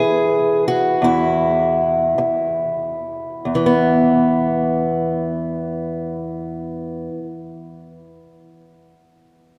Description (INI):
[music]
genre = folk, solo fingerstyle acoustic guitar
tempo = 45-56 BPM (dotted quarters)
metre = 6/8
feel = rubato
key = E major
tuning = A4 = 440 Hz
[part]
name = fingerpicked acoustic archtop guitar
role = solo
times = 0.0-7.3 s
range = E2 to B4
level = -19 LUFS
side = equal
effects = none
[sound]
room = wet cathedral reverb, RT60 6.2 s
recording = recorded in a church or concert hall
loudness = -19 LUFS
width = mono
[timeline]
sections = 0.0-3.5 A section; 3.5-8.7 B section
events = slowing down 0.0-3.5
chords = 0.0 E5; 3.5 N.C.